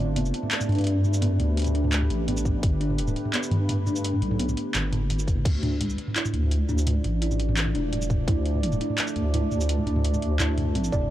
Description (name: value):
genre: half-time drum and bass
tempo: 170 BPM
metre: 4/4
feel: half-time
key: D dorian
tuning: A4 = 440 Hz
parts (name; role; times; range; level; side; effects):
- deep dark ambient pad; sustained chords; 0.0-11.1 s; F3 to D5; -33 LUFS; right 1 dB; chorus, built-in reverb, sidechain pumping
- deep soft wobble bass; bass; 0.0-11.1 s; E1 to G2; -24 LUFS; equal; chorus, transformer saturation
- kalimba; arpeggios; 0.2-11.1 s; D3 to D5; -32 LUFS; equal; tape echo
- drum and bass drum kit; drums; 0.2-11.1 s; crash cymbal, handclaps, hi-hat, shaker, toms; -29 LUFS; right 1 dB; none
- electronic kick drum; drums; 2.5-2.7, 5.3-5.5, 8.1-8.4, 10.9-11.0 s; none; -24 LUFS; equal; none
room: digital ambience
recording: dry, gritty hardware recording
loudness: -22 LUFS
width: side -13 dB against mid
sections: 0.0-11.1 A section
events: none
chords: 0.0 Gadd9; 5.5 Dm